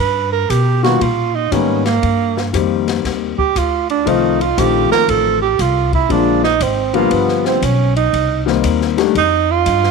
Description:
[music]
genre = jazz, small-group swing and bop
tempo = 118 BPM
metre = 4/4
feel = swing 67% on 8ths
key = unclear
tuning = A4 = 439 Hz
[part]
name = breathy tenor saxophone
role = second line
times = 0.0-9.9 s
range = A#3 to B4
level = -16 LUFS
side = right 12 dB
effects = none
[part]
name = upright bass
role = bass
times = 0.0-9.9 s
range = G1 to B2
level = -20 LUFS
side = left 1 dB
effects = none
[part]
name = open jazz drum kit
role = drums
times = 0.5-9.9 s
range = hi-hat, kick drum, ride cymbal, snare drum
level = -25 LUFS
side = left 6 dB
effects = none
[part]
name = warm grand piano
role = accompaniment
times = 0.8-9.1 s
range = D3 to G4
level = -16 LUFS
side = left 15 dB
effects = none
[sound]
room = light reverb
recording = 1960s-style stereo with parts hard left and right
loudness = -13 LUFS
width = side -4 dB against mid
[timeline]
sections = 0.0-9.9 A section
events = tenor saxophone solo 0.0-9.9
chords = 0.0 Gaug; 2.0 Cm7; 4.1 F7; 6.1 Bb7; 7.1 G7; 8.1 Cm7; 9.2 Fsus2

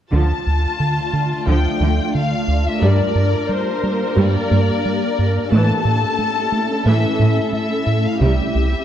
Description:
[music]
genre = cinematic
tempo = 89 BPM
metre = 4/4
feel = straight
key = D minor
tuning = A4 = 439 Hz
[part]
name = warm studio violin section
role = melody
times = 0.1-8.8 s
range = C5 to A5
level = -23 LUFS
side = left 6 dB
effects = none
[part]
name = warm symphonic viola section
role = accompaniment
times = 0.1-8.8 s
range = E3 to Bb4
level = -24 LUFS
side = right 1 dB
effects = none
[part]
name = ethereal airy pad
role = sustained chords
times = 0.7-8.8 s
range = G3 to E5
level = -23 LUFS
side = left 1 dB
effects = ensemble chorus, built-in reverb
[part]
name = soft round pluck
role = arpeggios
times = 0.1-8.4 s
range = C3 to C#4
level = -27 LUFS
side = right 2 dB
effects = none
[part]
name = round analog bass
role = riff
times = 0.1-8.8 s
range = C2 to A3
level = -19 LUFS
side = right 1 dB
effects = none
[part]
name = rich symphonic cello section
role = bass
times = 0.1-8.3 s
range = G2 to D3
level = -22 LUFS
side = right 2 dB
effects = none
[sound]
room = moderate scoring stage reverb, RT60 1.6 s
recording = worn, warbling old tape, cassette tape, warbly pitch drift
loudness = -15 LUFS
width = side -10 dB against mid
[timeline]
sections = 0.1-8.8 A section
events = none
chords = 0.1 Dm; 2.8 Gm; 5.5 A; 8.2 C

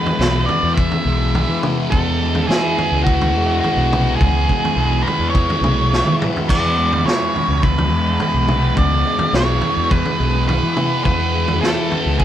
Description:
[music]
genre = psychedelic rock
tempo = 105 BPM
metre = 4/4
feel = straight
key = E mixolydian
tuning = A4 = 445 Hz
[part]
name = octave-fuzz lead guitar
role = melody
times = 0.0-12.2 s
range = F#4 to E5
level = -21 LUFS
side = right 2 dB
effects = distortion
[part]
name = thick fuzz guitar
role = riff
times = 0.0-12.2 s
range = E2 to E4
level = -21 LUFS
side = left 2 dB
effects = distortion, phaser
[part]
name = vintage drum kit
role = drums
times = 0.1-12.2 s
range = crash cymbal, kick drum, snare drum, toms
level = -20 LUFS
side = equal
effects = none
[part]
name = fuzz fingered electric bass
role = bass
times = 0.2-12.2 s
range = B1 to E3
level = -20 LUFS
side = equal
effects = overdrive
[sound]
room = light reverb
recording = band playing live in one room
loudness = -15 LUFS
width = side -11 dB against mid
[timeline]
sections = 0.0-12.2 A section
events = drum fill 5.9-6.5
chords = 0.0 E

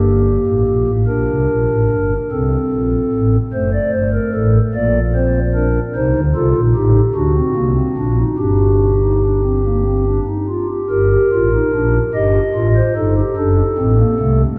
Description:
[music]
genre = classical, baroque-style 3-part fugue for pipe organ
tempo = 49 BPM (dotted quarters)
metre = 6/8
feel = straight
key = G minor from 6.0 s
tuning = A4 = 440 Hz
[part]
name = pipe organ, stopped flute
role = solo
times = 0.0-14.4 s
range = F#1 to Eb5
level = -16 LUFS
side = equal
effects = none
[sound]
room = wet church reverb, RT60 3.7 s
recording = dark, warm production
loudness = -16 LUFS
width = mono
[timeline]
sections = 0.0-1.1 A section; 1.1-10.9 B section; 10.9-14.6 C section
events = none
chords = 0.0 Gm; 1.1 Gmadd9; 2.3 Am; 3.5 D/F#; 4.7 Bbadd9; 6.0 Adim/C; 7.2 D; 8.4 G5; 10.9 Gm; 12.2 Am7b5/G; 13.4 D/F#

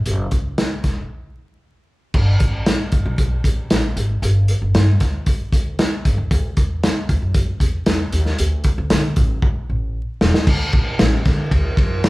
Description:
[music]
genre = uptempo 1960s-style soul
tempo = 115 BPM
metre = 4/4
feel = straight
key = unclear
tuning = A4 = 439 Hz
[part]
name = upright bass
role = bass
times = 0.0-12.1 s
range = E1 to D3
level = -20 LUFS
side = equal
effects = none
[part]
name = crunchy breakbeat drum kit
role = drums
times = 0.1-12.1 s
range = crash cymbal, hi-hat, kick drum, ride cymbal, snare drum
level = -18 LUFS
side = equal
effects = none
[sound]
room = light reverb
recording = band playing live in one room, vinyl crackle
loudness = -16 LUFS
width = side -20 dB against mid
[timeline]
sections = 0.0-2.1 A section; 2.1-10.5 B section; 10.5-12.1 C section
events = break 1.1-2.1; drum fill 9.4-10.5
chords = none

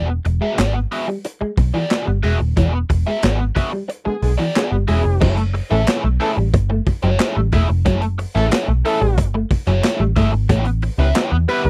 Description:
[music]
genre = funk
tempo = 91 BPM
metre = 4/4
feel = straight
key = unclear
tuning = A4 = 440 Hz
[part]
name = crunchy overdriven guitar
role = accompaniment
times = 0.0-11.7 s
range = A3 to E5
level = -25 LUFS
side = equal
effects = wah
[part]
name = vintage muted picked electric bass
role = bass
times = 0.0-11.7 s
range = D#1 to E2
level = -20 LUFS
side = equal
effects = none
[part]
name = semi-hollow electric guitar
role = riff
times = 0.2-11.7 s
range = E3 to C#4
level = -27 LUFS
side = equal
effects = none
[part]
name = raw garage drum kit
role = drums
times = 0.2-11.6 s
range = crash cymbal, handclaps, hi-hat, kick drum, snare drum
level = -21 LUFS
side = equal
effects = none
[part]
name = mellow horn section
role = second line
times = 4.0-11.7 s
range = D3 to B4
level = -24 LUFS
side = equal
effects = none
[sound]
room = little or no reverb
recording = dry, close 1970s-style studio recording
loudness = -18 LUFS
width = mono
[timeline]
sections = 0.0-5.2 A section; 5.2-11.7 B section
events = band accent 2.6-5.2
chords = 0.0 E9; 5.2 F#m9; 10.5 A9

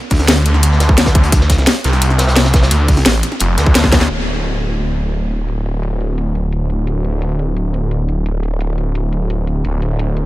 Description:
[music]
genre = dark technical drum and bass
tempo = 173 BPM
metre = 4/4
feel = straight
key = unclear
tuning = A4 = 440 Hz
[part]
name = snarling distorted saw bass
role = bass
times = 0.1-10.3 s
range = D1 to D2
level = -15 LUFS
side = equal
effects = distortion, overdrive
[part]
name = crunchy breakbeat drum kit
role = drums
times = 0.1-4.1 s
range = hi-hat, snare drum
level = -24 LUFS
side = equal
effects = high-pass filter on hats, small room ambience, high-pass filter on snare, high-pass filter on room
[part]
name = drum and bass drum kit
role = drums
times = 0.1-10.2 s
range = hi-hat, snare drum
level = -16 LUFS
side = left 1 dB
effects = overdrive, low-pass filter on snare, small room ambience, low-pass filter on hats
[part]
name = electronic kick drum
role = drums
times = 0.1-4.0 s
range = none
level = -12 LUFS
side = equal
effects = overdrive, small room ambience
[sound]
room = small room ambience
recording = none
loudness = -12 LUFS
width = side -17 dB against mid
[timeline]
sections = 0.0-4.1 A section; 4.1-10.3 B section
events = drop 0.0-4.1; drum fill 3.8; band accent 4.0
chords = none

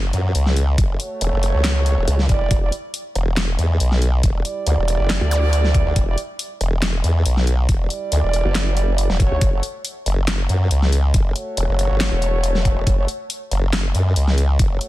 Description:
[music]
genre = heavy wobble dubstep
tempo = 139 BPM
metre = 4/4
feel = swing 53% on 16ths, half-time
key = F# phrygian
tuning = A4 = 440 Hz
[part]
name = formant-sweep wobble bass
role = bass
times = 0.0-14.8 s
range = E1 to F#2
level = -18 LUFS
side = equal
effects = chorus, overdrive
[part]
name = big-room dance drum kit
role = drums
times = 0.1-14.9 s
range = handclaps, hi-hat, snare drum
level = -25 LUFS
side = left 1 dB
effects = studio reverb
[part]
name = electronic kick drum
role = drums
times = 0.8-14.7 s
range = none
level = -18 LUFS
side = equal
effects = overdrive, studio reverb
[part]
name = warm brass ensemble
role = stabs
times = 0.9-14.9 s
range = G3 to D5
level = -26 LUFS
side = right 3 dB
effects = tape echo
[part]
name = formant-sweep wobble bass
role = bass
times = 2.1-13.1 s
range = E1 to D2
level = -19 LUFS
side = equal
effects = chorus, overdrive
[part]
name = zap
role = sound effects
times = 5.3-5.4 s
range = none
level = -31 LUFS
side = equal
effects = none
[sound]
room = little or no reverb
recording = dense, heavily limited modern master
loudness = -17 LUFS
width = side -16 dB against mid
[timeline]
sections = 0.0-14.9 A section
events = none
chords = 0.0 F#m; 2.5 Em7; 9.4 F#m

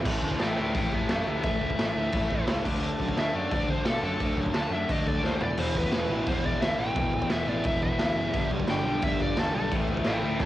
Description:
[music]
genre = punk rock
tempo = 174 BPM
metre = 4/4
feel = straight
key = unclear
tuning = A4 = 440 Hz
[part]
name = cranked stack guitar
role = riff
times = 0.0-10.5 s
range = E2 to D4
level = -32 LUFS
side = left 6 dB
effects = overdrive, cassette tape
[part]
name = fuzz guitar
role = riff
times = 0.0, 5.6-10.5 s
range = E2 to A3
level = -33 LUFS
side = equal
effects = distortion, cassette tape
[part]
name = overdriven electric guitar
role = riff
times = 0.0-10.5 s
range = E2 to D4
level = -36 LUFS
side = right 7 dB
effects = cassette tape
[part]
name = fuzz picked electric bass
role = bass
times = 0.0-10.5 s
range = E1 to B2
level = -33 LUFS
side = equal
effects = overdrive
[part]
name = raw garage drum kit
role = drums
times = 0.1-10.5 s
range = crash cymbal, kick drum, snare drum, toms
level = -29 LUFS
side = equal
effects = cassette tape
[part]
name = smooth overdriven lead guitar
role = melody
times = 0.4-10.5 s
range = G4 to A5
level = -31 LUFS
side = equal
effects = cassette tape
[sound]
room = light reverb, small room ambience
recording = home recording on cassette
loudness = -25 LUFS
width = side -14 dB against mid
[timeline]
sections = 0.1-10.5 A section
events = lead electric guitar solo 0.1-10.5; drum fill 5.2-5.6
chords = 0.1 A5; 2.6 D; 5.4 E5; 8.3 G; 9.7 A5

